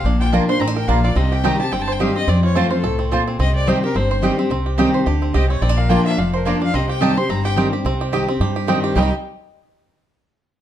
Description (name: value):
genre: bluegrass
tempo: 216 BPM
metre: 4/4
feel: swing 55% on 8ths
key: C dorian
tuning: A4 = 441 Hz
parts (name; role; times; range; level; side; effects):
- bluegrass banjo; melody; 0.0-9.1 s; G3 to C5; -25 LUFS; right 4 dB; plate reverb
- clear fiddle; melody; 0.0-9.1 s; A4 to C6; -25 LUFS; left 3 dB; plate reverb
- picked steel-string acoustic guitar; accompaniment; 0.0-9.1 s; F2 to G4; -20 LUFS; left 2 dB; none
- upright bass; bass; 0.0-9.1 s; F1 to G2; -20 LUFS; equal; none
- mandolin; stabs; 0.3-9.1 s; Bb3 to Bb5; -22 LUFS; right 5 dB; none
room: moderate studio reverb, RT60 0.7 s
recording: dark, warm production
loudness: -16 LUFS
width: side -11 dB against mid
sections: 0.0-7.8 A section; 7.8-9.0 B section; 9.0-10.1 C section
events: none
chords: 0.1 Bb; 1.2 Cm; 2.3 F; 3.4 Cm; 5.6 Bb; 6.7 Cm